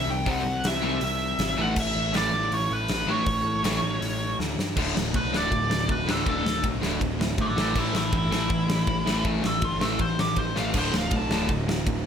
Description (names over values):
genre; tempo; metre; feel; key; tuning
punk rock; 160 BPM; 4/4; straight; unclear; A4 = 441 Hz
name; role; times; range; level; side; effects
nasal lead guitar with a parked wah; melody; 0.0-11.5 s; E4 to A5; -28 LUFS; right 1 dB; overdrive
crunchy overdriven guitar; riff; 0.0-12.1 s; D2 to C4; -32 LUFS; left 2 dB; none
fuzz picked electric bass; bass; 0.0-12.0 s; D1 to A2; -32 LUFS; equal; overdrive
crunchy overdriven guitar; riff; 0.3-12.0 s; D2 to C4; -31 LUFS; left 10 dB; none
raw garage guitar; riff; 0.3-12.0 s; D2 to C4; -32 LUFS; right 9 dB; overdrive
big rock drum kit; drums; 0.3-12.0 s; crash cymbal, hi-hat, kick drum, ride cymbal, snare drum, splash cymbal; -28 LUFS; equal; none
room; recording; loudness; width
little or no reverb; none; -23 LUFS; side -8 dB against mid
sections
0.0-4.8 A section; 4.8-12.1 B section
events
half time 0.0-4.8; drum fill 4.4-4.8, 10.6; lead electric guitar solo 4.8-12.1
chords
0.0 C; 1.6 A; 4.8 D5; 7.6 A5; 10.7 D5